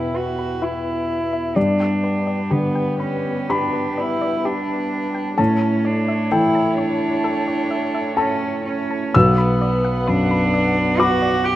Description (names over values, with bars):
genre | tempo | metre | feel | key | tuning
neoclassical piano and strings | 64 BPM | 4/4 | rubato | unclear | A4 = 442 Hz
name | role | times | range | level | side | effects
rich cello | second line | 0.0-11.6 s | B3 to G4 | -22 LUFS | right 2 dB | none
felt-muted upright piano | accompaniment | 0.0-11.6 s | B1 to E6 | -20 LUFS | left 1 dB | none
warm chamber string section | sustained chords | 0.0-11.6 s | B3 to F#5 | -27 LUFS | left 1 dB | none
hollow square pluck | arpeggios | 0.0-11.6 s | E4 to B5 | -31 LUFS | left 3 dB | chorus, slapback echo
room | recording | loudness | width
moderate plate reverb, RT60 3.4 s | rough home demo mix | -17 LUFS | side -14 dB against mid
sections
0.0-11.6 A section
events
none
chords
0.0 Em; 1.6 G; 5.4 A; 9.1 Bm